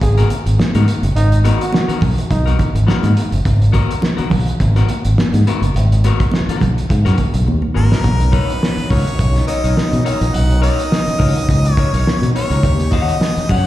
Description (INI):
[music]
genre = funk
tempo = 105 BPM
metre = 4/4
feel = swing 56% on 16ths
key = G# minor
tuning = A4 = 441 Hz
[part]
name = breathy trombone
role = second line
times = 0.0-2.5, 9.2-12.3 s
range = D#4 to G#4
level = -25 LUFS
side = right 3 dB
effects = slapback echo
[part]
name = clean electric guitar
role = accompaniment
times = 0.0-13.7 s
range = B3 to F#5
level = -24 LUFS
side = left 8 dB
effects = slapback echo
[part]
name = fingered electric bass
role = bass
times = 0.0-13.6 s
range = F#1 to B2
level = -14 LUFS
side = equal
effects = none
[part]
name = cloth-damped thuddy drum kit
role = drums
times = 0.0-13.6 s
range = hi-hat, kick drum, snare drum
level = -19 LUFS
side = equal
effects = none
[part]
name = congas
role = percussion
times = 0.3-7.7 s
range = none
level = -24 LUFS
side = right 3 dB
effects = slapback echo
[part]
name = bright harmonica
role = melody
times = 7.8-13.7 s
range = A#4 to F#5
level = -23 LUFS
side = equal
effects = slapback echo
[part]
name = overdriven tonewheel organ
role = sustained chords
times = 8.0-13.7 s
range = F#3 to G4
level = -27 LUFS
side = right 1 dB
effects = fast rotary speaker, chorus vibrato
[sound]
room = little or no reverb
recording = live gig heard through the venue's PA, recital hall reverb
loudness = -13 LUFS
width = side -14 dB against mid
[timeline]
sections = 0.0-8.0 A section; 8.0-13.7 B section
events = drum fill 7.5-8.0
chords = 0.0 G#m9; 8.0 Bmaj9; 12.6 D#7#9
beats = 0.01 0.59 | 1.16 1.73 2.31 2.88 | 3.45 4.03 4.60 5.17 | 5.75 6.32 6.90 7.47 | 8.04 8.62 9.19 9.77 | 10.34 10.91 11.49 12.06 | 12.64 13.21